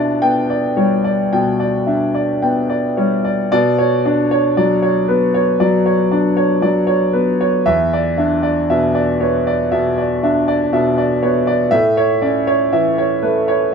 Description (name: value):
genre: neoclassical minimalist piano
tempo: 54-60 BPM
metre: 4/4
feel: rubato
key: B minor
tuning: A4 = 440 Hz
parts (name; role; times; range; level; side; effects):
- warm concert grand piano; solo; 0.0-13.7 s; E2 to G5; -13 LUFS; equal; none
room: moderate studio reverb, RT60 0.5 s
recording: band playing live in one room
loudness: -13 LUFS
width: side -6 dB against mid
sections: 0.0-3.5 A section; 3.5-13.7 B section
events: none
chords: 0.0 G/B; 3.5 Bmadd9; 7.7 E5; 11.7 A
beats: 0.23 1.32 2.41 | 3.51 4.57 5.60 6.64 | 7.67 8.70 9.72 10.73 | 11.73 12.74